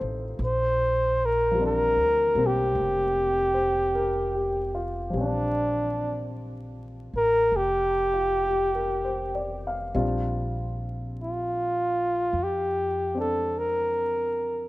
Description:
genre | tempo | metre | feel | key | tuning
jazz ballad | 50 BPM | 4/4 | swing 67% on 8ths | Bb major | A4 = 440 Hz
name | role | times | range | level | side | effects
warm flugelhorn | melody | 0.0-14.7 s | D4 to C5 | -24 LUFS | equal | none
warm grand piano | accompaniment | 0.0-14.7 s | F3 to F5 | -32 LUFS | left 2 dB | none
upright bass | bass | 0.0-14.7 s | F1 to F2 | -32 LUFS | equal | none
room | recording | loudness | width
light reverb, small room ambience | rough home demo mix, vinyl crackle | -23 LUFS | side -18 dB against mid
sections
0.0-9.9 A section; 9.9-14.7 B section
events
flugelhorn solo 9.9-14.7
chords
0.4 Bb6

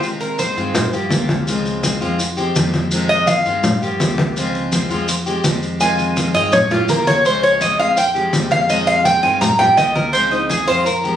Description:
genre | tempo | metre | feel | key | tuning
latin, Cuban son and guajira | 166 BPM | 4/4 | straight | F minor | A4 = 438 Hz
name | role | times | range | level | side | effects
picked steel-string acoustic guitar | accompaniment | 0.0-11.2 s | C3 to G4 | -22 LUFS | left 2 dB | none
congas | percussion | 0.0-11.2 s | none | -20 LUFS | left 1 dB | none
maracas | percussion | 0.0-11.2 s | none | -26 LUFS | left 2 dB | none
Cuban tres | arpeggios | 0.2-0.9, 3.1-11.2 s | Eb4 to Bb5 | -15 LUFS | right 1 dB | none
upright bass | bass | 0.6-11.2 s | Db2 to G2 | -26 LUFS | right 1 dB | none
room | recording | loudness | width
moderate studio reverb, RT60 0.5 s | recorded on a phone in the room, studio reverb, compression | -14 LUFS | side -10 dB against mid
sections
0.0-11.2 A section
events
Cuban tres solo 0.0-11.2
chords
0.0 Fm7; 0.8 Gm7b5; 1.5 Dbmaj7; 2.2 Fmadd9; 2.9 Fm7; 3.6 Gm7b5; 4.4 Dbmaj7; 5.1 Fmadd9; 5.8 Fm7; 6.5 Gm7b5; 7.3 Dbmaj7; 8.0 Fmadd9; 8.7 Fm7; 9.4 Gm7b5; 10.1 Dbmaj7

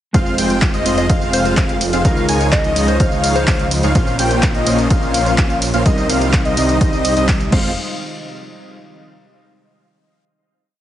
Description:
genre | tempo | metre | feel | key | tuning
EDM, festival progressive house | 126 BPM | 4/4 | straight | F minor | A4 = 440 Hz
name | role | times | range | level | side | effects
mellow electric guitar | accompaniment | 0.1-7.7 s | Bb2 to Eb5 | -23 LUFS | right 1 dB | spring reverb, sidechain pumping, tape echo
lush unison pad | sustained chords | 0.9-7.7 s | C3 to F4 | -26 LUFS | equal | chorus, sidechain pumping
wide unison lead | arpeggios | 0.1-7.7 s | Eb5 to Ab5 | -23 LUFS | left 1 dB | sidechain pumping, tape echo
dense compressed supersaw | riff | 0.1-7.7 s | G3 to Ab5 | -21 LUFS | equal | sidechain pumping, tape echo
wide detuned saw bass | bass | 0.1-7.7 s | F1 to Db2 | -22 LUFS | equal | chorus, sidechain pumping
big-room dance drum kit | drums | 0.1-7.6 s | crash cymbal, handclaps, hi-hat, ride cymbal, tambourine | -23 LUFS | equal | none
electronic kick drum | drums | 0.1-7.6 s | none | -16 LUFS | equal | none
soft struck synth lead | melody | 1.0-3.8 s | C5 to Eb5 | -24 LUFS | left 1 dB | chorus, tape echo
room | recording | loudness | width
light reverb | heavily compressed radio sound, multiband compression, nothing above 10.6 kHz | -13 LUFS | side -12 dB against mid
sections
0.1-7.8 drop; 7.8-9.7 final hit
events
drop 0.1-7.8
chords
0.1 Fm; 2.0 Dbadd9; 4.0 Bbmadd9; 5.9 Cm; 7.5 Fm; 7.8 N.C.

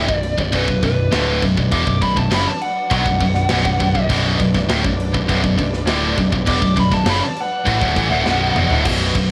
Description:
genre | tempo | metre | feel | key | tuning
heavy metal | 101 BPM | 4/4 | straight | B minor | A4 = 442 Hz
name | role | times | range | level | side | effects
dark smooth lead guitar | melody | 0.0-8.8 s | B4 to D6 | -25 LUFS | equal | overdrive, cassette tape
muted studio string section | sustained chords | 0.0-9.3 s | D3 to D5 | -32 LUFS | equal | cassette tape
heavy high-gain guitar | riff | 0.0-9.3 s | B1 to F#3 | -23 LUFS | equal | distortion, cassette tape
high-gain distorted guitar | riff | 0.0-8.8 s | B1 to F#3 | -25 LUFS | equal | distortion, cassette tape
high-gain distorted guitar | riff | 0.0-9.3 s | B1 to F#3 | -29 LUFS | equal | none
growling picked electric bass | bass | 0.0-9.3 s | B0 to B1 | -24 LUFS | equal | overdrive
tight metal drum kit | drums | 0.1-9.3 s | crash cymbal, kick drum, snare drum, toms | -26 LUFS | equal | none
room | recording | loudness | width
little or no reverb | home recording on cassette | -17 LUFS | mono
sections
0.0-8.9 A section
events
lead electric guitar solo 0.0-8.9; drum fill 8.3-8.9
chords
0.0 Bm

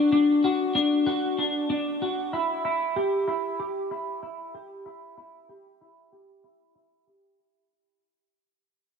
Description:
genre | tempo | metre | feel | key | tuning
dream pop | 95 BPM | 4/4 | straight | unclear | A4 = 441 Hz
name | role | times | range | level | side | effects
electric guitar at the edge of break-up | arpeggios | 0.0-7.4 s | D4 to G4 | -24 LUFS | left 1 dB | analog chorus, low-pass filter, tape echo
room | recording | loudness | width
wet lush hall reverb, RT60 3.0 s | none | -23 LUFS | side -6 dB against mid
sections
0.0-7.4 A section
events
fade-out 0.0-7.4; filter sweep on clean electric guitar 0.0-7.4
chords
none

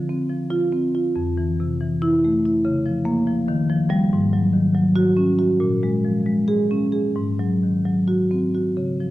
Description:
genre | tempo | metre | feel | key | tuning
classical, contemporary piece for solo marimba | 256-290 BPM (eighths) | 7/8 | rubato | unclear | A4 = 440 Hz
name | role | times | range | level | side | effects
marimba with medium mallets | solo | 0.0-9.1 s | F2 to Ab4 | -18 LUFS | equal | none
room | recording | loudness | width
wet recital hall reverb, RT60 1.6 s | none | -18 LUFS | side -16 dB against mid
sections
0.0-8.8 A section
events
none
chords
0.0 Dm7; 1.2 Fmaj7; 2.7 Db6; 3.5 Ebadd9; 4.1 Ab7sus4; 5.6 Bbm7; 7.2 Ab7

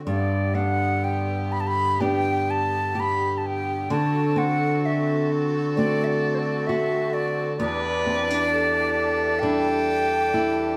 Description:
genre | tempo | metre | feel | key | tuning
celtic folk, Celtic slow air | 64 BPM | 4/4 | rubato | unclear | A4 = 440 Hz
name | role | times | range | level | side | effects
flamenco guitar | accompaniment | 0.0-10.8 s | E2 to G4 | -27 LUFS | equal | none
musette accordion | sustained chords | 0.0-10.8 s | G2 to G4 | -36 LUFS | equal | none
bright wooden flute | melody | 0.1-10.8 s | C5 to B5 | -27 LUFS | equal | none
dark fiddle | second line | 0.1-10.8 s | G4 to B4 | -31 LUFS | equal | none
room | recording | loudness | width
moderate large studio reverb, RT60 1.0 s | band playing live in one room | -23 LUFS | mono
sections
0.1-10.8 A section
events
none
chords
0.1 G; 3.9 D7; 7.6 Em7

